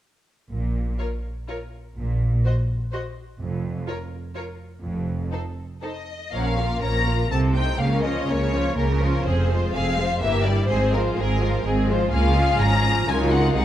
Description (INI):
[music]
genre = quick classical-period movement for string orchestra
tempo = 124 BPM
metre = 3/4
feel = rubato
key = Bb minor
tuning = A4 = 440 Hz
[part]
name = rich studio double bass section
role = bass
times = 0.5-13.6 s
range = F1 to Db2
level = -24 LUFS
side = right 1 dB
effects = none
[part]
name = rich symphonic cello section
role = bass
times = 0.5-13.6 s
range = F2 to Db3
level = -27 LUFS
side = right 2 dB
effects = none
[part]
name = rich symphonic violin section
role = melody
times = 1.0-13.6 s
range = Bb4 to Bb5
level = -27 LUFS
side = left 4 dB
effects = none
[part]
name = warm symphonic violin section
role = second line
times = 1.0-13.6 s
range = C4 to Db5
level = -27 LUFS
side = left 2 dB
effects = none
[part]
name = warm studio viola section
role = accompaniment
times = 1.0-13.6 s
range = E3 to Gb4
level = -29 LUFS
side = equal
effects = none
[sound]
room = moderate recital hall reverb, RT60 1.3 s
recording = none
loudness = -20 LUFS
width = side -12 dB against mid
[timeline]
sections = 0.5-6.3 A section; 6.3-13.6 B section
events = none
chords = 0.5 N.C.; 4.8 F7(no3); 6.3 Bbm; 7.3 Adim/C; 7.8 Bbm/Db; 9.3 Fm; 10.2 Edim/G; 10.7 Fm/Ab; 12.1 Db; 13.1 Ebm7/Db